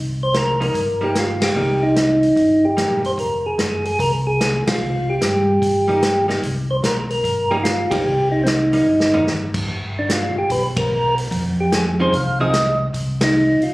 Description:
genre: soul jazz organ trio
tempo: 148 BPM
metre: 4/4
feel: swing 66% on 8ths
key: C minor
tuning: A4 = 445 Hz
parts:
  - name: mellow tonewheel organ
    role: bass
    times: 0.0-13.7 s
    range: F1 to G2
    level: -24 LUFS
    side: equal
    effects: slow rotary speaker
  - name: percussive tonewheel organ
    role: melody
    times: 0.2-13.7 s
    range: C4 to F5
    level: -18 LUFS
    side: equal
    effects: slow rotary speaker, plate reverb
  - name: vintage drum kit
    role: drums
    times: 0.3-13.7 s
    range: crash cymbal, hi-hat, kick drum, ride cymbal, snare drum, toms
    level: -23 LUFS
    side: equal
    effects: none
  - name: archtop guitar, miked and amplified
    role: accompaniment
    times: 0.6-3.0, 5.9-9.3, 12.0-12.5 s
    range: F3 to Ab4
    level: -24 LUFS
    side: right 1 dB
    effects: none
room: moderate large studio reverb, RT60 1.0 s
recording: recorded on a phone in the room, club reverb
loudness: -16 LUFS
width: side -20 dB against mid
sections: 0.0-13.7 A section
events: band accent 1.4, 4.6, 7.9, 10.7, 13.1; drum fill 8.9-9.3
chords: 0.0 Cm7; 3.2 Fm; 4.8 Cm7; 9.7 G; 11.3 Fm7; 12.9 Cm

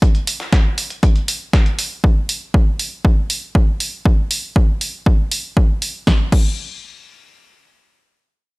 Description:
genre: acid house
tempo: 119 BPM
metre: 4/4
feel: straight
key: none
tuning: none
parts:
  - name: dusty soul sampler-style drum kit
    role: drums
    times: 0.0-1.9 s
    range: hi-hat, snare drum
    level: -27 LUFS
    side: equal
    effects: sidechain pumping on hats, high-pass filter on hats, studio reverb, high-pass filter on snare, high-pass filter on room
  - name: electronic kick drum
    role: drums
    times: 0.0-6.5 s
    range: none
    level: -13 LUFS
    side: equal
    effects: overdrive, studio reverb
  - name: punchy analog drum machine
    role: drums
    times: 0.3-6.5 s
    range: crash cymbal, hi-hat, snare drum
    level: -22 LUFS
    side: right 1 dB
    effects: overdrive, studio reverb
room: little or no reverb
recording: none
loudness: -15 LUFS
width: side -26 dB against mid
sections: 0.0-6.1 A section; 6.1-8.6 B section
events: none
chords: none

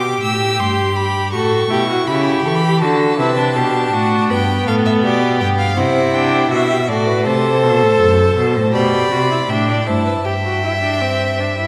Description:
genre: classical, baroque-style fugue for string quartet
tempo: 81 BPM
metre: 4/4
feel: straight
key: C major, G major from 7.3 s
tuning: A4 = 440 Hz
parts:
  - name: rich violin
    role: melody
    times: 0.0-11.7 s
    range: D5 to E6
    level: -24 LUFS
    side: equal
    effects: none
  - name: rich violin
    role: second line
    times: 0.0-11.7 s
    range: E4 to E5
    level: -22 LUFS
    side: equal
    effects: none
  - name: rich viola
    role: accompaniment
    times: 0.0-11.7 s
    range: B3 to A4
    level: -22 LUFS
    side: equal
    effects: none
  - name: rich cello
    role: bass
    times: 0.0-11.7 s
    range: F#2 to E3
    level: -21 LUFS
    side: equal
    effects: none
room: wet concert hall reverb, RT60 1.9 s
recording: none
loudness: -16 LUFS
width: mono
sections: 0.0-11.7 A section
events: none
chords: 0.0 G; 1.3 A7; 2.8 D; 4.3 G; 5.8 C; 7.3 F#dim; 8.7 G/B; 10.3 Dsus4/G

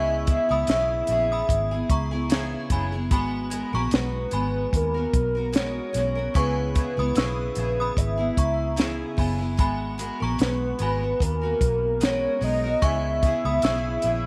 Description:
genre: indie pop, bedroom pop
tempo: 74 BPM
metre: 4/4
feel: swing 55% on 16ths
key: unclear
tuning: A4 = 440 Hz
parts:
  - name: warbly nostalgic lead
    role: melody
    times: 0.0-14.3 s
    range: A#4 to E5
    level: -29 LUFS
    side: equal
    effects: lush chorus, tape echo
  - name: synth chime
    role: second line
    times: 0.0-13.8 s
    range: G#5 to E6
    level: -35 LUFS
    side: equal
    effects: ensemble chorus, subtle chorus, tape echo
  - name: picked steel-string acoustic guitar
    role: accompaniment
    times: 0.0-14.3 s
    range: C#3 to A#4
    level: -33 LUFS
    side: equal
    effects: lush chorus, vibrato effect
  - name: vintage muted fingered electric bass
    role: bass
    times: 0.0-14.3 s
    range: F#1 to D#2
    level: -30 LUFS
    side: equal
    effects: none
  - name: compact cocktail drum kit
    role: drums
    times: 0.3-14.2 s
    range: hi-hat, kick drum, snare drum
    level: -26 LUFS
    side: equal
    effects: none
room: light reverb, small room ambience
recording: none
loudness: -24 LUFS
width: mono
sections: 0.0-14.3 A section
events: none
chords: 0.0 C#m7; 3.1 G#m9; 6.4 C#m7; 9.6 G#m9; 12.8 C#m7

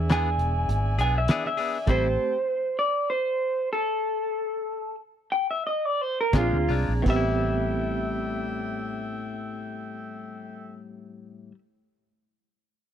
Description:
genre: straight-eighth soul blues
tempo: 81-101 BPM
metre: 4/4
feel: swing 53% on 16ths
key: A minor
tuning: A4 = 437 Hz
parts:
  - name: barky reed electric piano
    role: accompaniment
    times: 0.0-2.4, 6.3-11.5 s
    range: A3 to G#4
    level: -32 LUFS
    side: right 6 dB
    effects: overdrive, medium tremolo
  - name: warm horn section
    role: sustained chords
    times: 0.0-2.4, 6.3-10.8 s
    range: A4 to Bb5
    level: -37 LUFS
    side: equal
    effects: none
  - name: vintage muted fingered electric bass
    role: bass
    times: 0.0-2.2, 6.3-11.5 s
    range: E1 to E2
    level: -27 LUFS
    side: equal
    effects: none
  - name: electric guitar through a small old amp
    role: melody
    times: 0.1-11.5 s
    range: F4 to G#5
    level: -26 LUFS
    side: equal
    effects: none
  - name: direct-recorded clean electric guitar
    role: stabs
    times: 0.1-2.1, 6.3-11.6 s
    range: A2 to G#4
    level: -33 LUFS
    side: left 6 dB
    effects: none
  - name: cloth-damped thuddy drum kit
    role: drums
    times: 0.1-2.0, 6.3-7.2 s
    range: crash cymbal, hi-hat, kick drum, snare drum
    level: -25 LUFS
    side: equal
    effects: none
room: small room reverb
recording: dry, close 1970s-style studio recording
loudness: -24 LUFS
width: side -9 dB against mid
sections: 0.0-7.1 A section; 7.1-10.0 B section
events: slowing down 1.9-7.1; stop 1.9-6.3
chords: 0.0 E7; 1.9 Am7; 6.3 Bb7; 7.1 Am7

